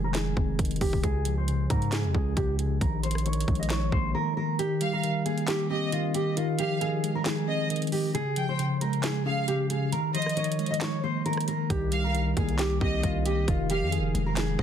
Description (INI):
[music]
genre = hip hop, trap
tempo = 135 BPM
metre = 4/4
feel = half-time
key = C phrygian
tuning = A4 = 440 Hz
[part]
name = nylon-string guitar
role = melody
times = 0.0-14.6 s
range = F4 to Eb5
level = -31 LUFS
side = right 2 dB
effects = low-pass filter
[part]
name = mellow tine electric piano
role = accompaniment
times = 0.0-14.6 s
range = Db3 to Db4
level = -29 LUFS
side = left 1 dB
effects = medium stereo tremolo, low-pass filter
[part]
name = distorted 808-style bass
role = bass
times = 0.0-4.1, 11.7-14.6 s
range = F1 to Ab2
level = -29 LUFS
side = equal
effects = distortion
[part]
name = trap drum kit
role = drums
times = 0.1-14.6 s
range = handclaps, hi-hat, kick drum, rim click, snare drum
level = -31 LUFS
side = equal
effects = none
[part]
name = rich studio violin section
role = second line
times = 4.8-14.6 s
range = Eb5 to G5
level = -34 LUFS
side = right 1 dB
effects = digital delay
[sound]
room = light reverb, digital ambience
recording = dense, heavily limited modern master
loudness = -25 LUFS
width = side -9 dB against mid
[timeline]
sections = 0.0-14.6 A section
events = filter sweep 0.0-4.6; drums muted 4.1-4.6; kick muted 4.6-11.7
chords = 0.0 Fm7; 1.0 Db; 2.8 Bb7sus4; 4.6 Cm7; 6.4 Fm7; 8.1 Db; 9.9 Bb7sus4; 11.7 Cm7; 13.5 Fm7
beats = 0.15 0.59 | 1.03 1.48 1.92 2.37 | 2.81 3.26 3.70 4.15 | 4.59 5.04 5.48 5.92 | 6.37 6.81 7.26 7.70 | 8.15 8.59 9.04 9.48 | 9.92 10.37 10.81 11.26 | 11.70 12.15 12.59 13.04 | 13.48 13.92 14.37